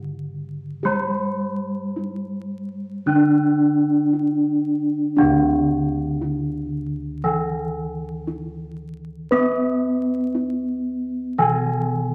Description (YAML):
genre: Javanese gamelan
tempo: 52-58 BPM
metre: 4/4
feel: straight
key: unclear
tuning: A4 = 439 Hz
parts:
  - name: gamelan-type bronze metallophone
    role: accompaniment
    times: 0.0-12.1 s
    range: D3 to D4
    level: -24 LUFS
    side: equal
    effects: none
  - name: gamelan-type bossed gongs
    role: bass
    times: 0.0-12.1 s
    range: D2 to B4+20c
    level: -26 LUFS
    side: equal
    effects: none
room: wet large studio reverb, RT60 1.4 s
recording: vinyl crackle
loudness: -22 LUFS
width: mono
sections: 0.0-5.2 A section; 5.2-12.1 B section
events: none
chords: none